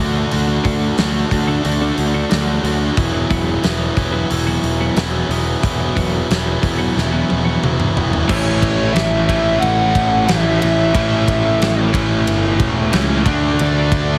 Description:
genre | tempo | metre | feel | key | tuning
quiet-loud alternative rock | 90 BPM | 4/4 | straight | A major | A4 = 440 Hz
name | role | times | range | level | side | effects
distorted electric guitar | riff | 0.0-14.2 s | A2 to F#4 | -23 LUFS | equal | overdrive
fuzz picked electric bass | bass | 0.0-14.2 s | E1 to D2 | -22 LUFS | equal | overdrive
big rock drum kit | drums | 0.3-14.1 s | crash cymbal, hi-hat, kick drum, ride cymbal, snare drum, toms | -23 LUFS | equal | none
twelve-string electric guitar | arpeggios | 0.5-7.8 s | D3 to F#4 | -26 LUFS | equal | none
smooth overdriven lead guitar | melody | 8.3-14.2 s | C#5 to F#5 | -22 LUFS | equal | slapback echo
cranked stack guitar | riff | 8.3-14.2 s | A2 to D4 | -23 LUFS | equal | overdrive, tremolo
room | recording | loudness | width
light reverb, small room ambience | heavily compressed radio sound | -17 LUFS | mono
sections
0.0-8.3 A section; 8.3-14.2 B section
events
drum fill 7.0-8.3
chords
0.0 D; 3.0 Esus2; 8.3 A; 13.3 D

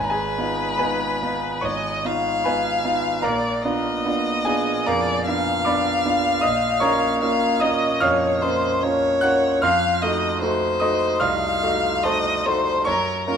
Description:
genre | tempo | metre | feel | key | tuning
classical, romantic duo for violin and grand piano | 74 BPM | 4/4 | rubato | Bb minor from 6.4 s | A4 = 440 Hz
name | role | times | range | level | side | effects
clear violin | melody | 0.0-13.4 s | Bb4 to F5 | -22 LUFS | left 3 dB | none
bright concert grand piano | accompaniment | 0.0-13.4 s | Ab1 to Gb6 | -21 LUFS | right 2 dB | none
room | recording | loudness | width
moderate stone room reverb, RT60 1.4 s | dark, warm production | -19 LUFS | side -7 dB against mid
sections
0.0-13.4 A section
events
none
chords
0.0 Fm7b5/Ab; 3.2 Bb7b9; 6.4 Bbm; 9.6 F7b9; 12.9 Gbmaj7

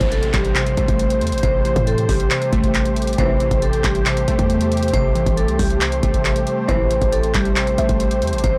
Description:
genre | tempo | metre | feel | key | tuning
hip hop, trap | 137 BPM | 4/4 | half-time | A minor | A4 = 441 Hz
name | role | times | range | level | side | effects
vibraphone with medium hard mallets | melody | 0.0-8.6 s | G4 to C5 | -25 LUFS | equal | none
glassy digital keys | accompaniment | 0.0-8.6 s | C3 to A3 | -26 LUFS | equal | chorus
warm analog pad | sustained chords | 0.2-8.6 s | A3 to C5 | -30 LUFS | equal | chorus
muted chamber string section | stabs | 0.0-0.1, 3.2-3.6, 6.7-7.1 s | A2 to E3 | -31 LUFS | equal | none
hard-hitting 808-style bass | bass | 0.0-8.6 s | A1 to A2 | -24 LUFS | equal | none
booming analog drum machine | drums | 0.0-8.6 s | handclaps, hi-hat, kick drum | -24 LUFS | equal | none
downlifter | sound effects | 0.0-3.2 s | none | -37 LUFS | equal | none
soft round pluck | second line | 6.7-8.4 s | C5 to E5 | -32 LUFS | equal | none
room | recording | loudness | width
little or no reverb | blown-out, overdriven recording, overdrive | -18 LUFS | mono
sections
0.0-8.6 A section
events
none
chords
0.0 Am7

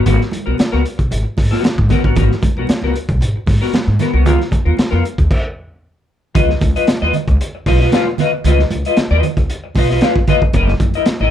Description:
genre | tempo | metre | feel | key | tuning
funk | 114 BPM | 4/4 | straight | unclear | A4 = 440 Hz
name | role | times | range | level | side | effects
clean electric guitar | accompaniment | 0.0-11.3 s | B3 to E#5 | -18 LUFS | left 4 dB | analog chorus
upright bass | bass | 0.0-11.3 s | F#1 to G#2 | -16 LUFS | equal | none
crunchy breakbeat drum kit | drums | 0.1-11.2 s | crash cymbal, hi-hat, kick drum, snare drum | -16 LUFS | equal | none
congas | percussion | 0.1-11.3 s | none | -24 LUFS | right 7 dB | none
room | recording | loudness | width
light reverb | dark, warm production | -13 LUFS | side -10 dB against mid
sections
0.0-6.4 A section; 6.4-11.3 B section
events
stop 5.3-6.4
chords
0.0 G#m9; 4.3 C#13 (rootless); 6.4 C#9; 10.5 F#13

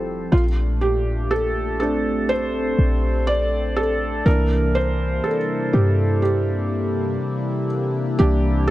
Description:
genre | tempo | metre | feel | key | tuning
contemporary R&B | 61 BPM | 4/4 | swing 58% on 16ths | unclear | A4 = 438 Hz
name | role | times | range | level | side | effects
felt-muted upright piano | accompaniment | 0.0-8.7 s | E3 to D5 | -22 LUFS | right 1 dB | none
chorused pulse-width pad | sustained chords | 0.0-8.7 s | Bb2 to E5 | -27 LUFS | left 2 dB | none
clean 808-style bass | bass | 0.0-8.7 s | F1 to G2 | -21 LUFS | equal | none
room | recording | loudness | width
light reverb | none | -18 LUFS | side -15 dB against mid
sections
0.0-8.7 A section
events
felt piano solo 0.0-8.7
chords
0.3 Bbmaj9; 4.3 C9

